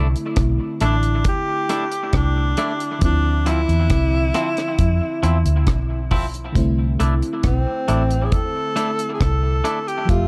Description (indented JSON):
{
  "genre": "lovers rock reggae",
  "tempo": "68 BPM",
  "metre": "4/4",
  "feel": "straight",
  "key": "C major",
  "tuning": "A4 = 440 Hz",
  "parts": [
    { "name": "FM electric piano with soft pad layer", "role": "accompaniment", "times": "0.0-10.3 s", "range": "D3 to E5", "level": "-30 LUFS", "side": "equal", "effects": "chorus" },
    { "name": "twangy electric guitar", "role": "stabs", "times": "0.0-9.8 s", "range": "F3 to E4", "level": "-30 LUFS", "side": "equal", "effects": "tape echo" },
    { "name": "vintage muted fingered electric bass", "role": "bass", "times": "0.0-10.3 s", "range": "F1 to F2", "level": "-21 LUFS", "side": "equal", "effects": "none" },
    { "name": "deep reggae drum kit", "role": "drums", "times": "0.2-10.3 s", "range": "hi-hat, kick drum, rim click", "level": "-24 LUFS", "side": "equal", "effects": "none" },
    { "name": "breathy tenor saxophone", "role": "melody", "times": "0.8-10.3 s", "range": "C4 to A4", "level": "-26 LUFS", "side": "equal", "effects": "tape echo" }
  ],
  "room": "small room ambience",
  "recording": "dark, warm production",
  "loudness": "-20 LUFS",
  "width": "mono",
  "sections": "0.0-10.3 A section",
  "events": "none",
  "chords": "0.0 C69; 3.0 Dm9; 6.6 C69"
}